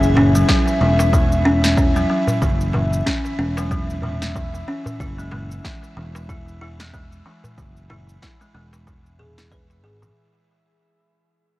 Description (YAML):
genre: organic downtempo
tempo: 93 BPM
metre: 4/4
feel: swing 57% on 16ths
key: unclear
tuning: A4 = 442 Hz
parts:
  - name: sustaining fretless electric bass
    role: bass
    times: 0.0-10.1 s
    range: E1 to G#1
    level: -21 LUFS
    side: equal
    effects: sidechain pumping
  - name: electronic shaker and snare drum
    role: drums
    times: 0.0-10.1 s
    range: none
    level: -27 LUFS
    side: equal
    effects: none
  - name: drifting glass-harmonics texture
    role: texture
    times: 0.0-10.2 s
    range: E4 to E5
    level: -26 LUFS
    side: left 1 dB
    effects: chorus, built-in reverb, shimmer reverb
  - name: darbuka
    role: percussion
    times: 0.1-10.1 s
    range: none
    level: -26 LUFS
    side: equal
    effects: none
  - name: buzzing kalimba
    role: arpeggios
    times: 0.2-10.1 s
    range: E3 to B4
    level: -21 LUFS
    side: equal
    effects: ping-pong delay
  - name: electronic kick drum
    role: drums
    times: 0.5-9.7 s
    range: none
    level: -22 LUFS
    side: equal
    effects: none
room: light reverb, digital ambience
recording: worn, warbling old tape, cassette tape, warbly pitch drift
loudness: -16 LUFS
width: side -17 dB against mid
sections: 0.0-10.2 A section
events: fade-out 0.0-10.2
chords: 0.0 F#5; 5.0 E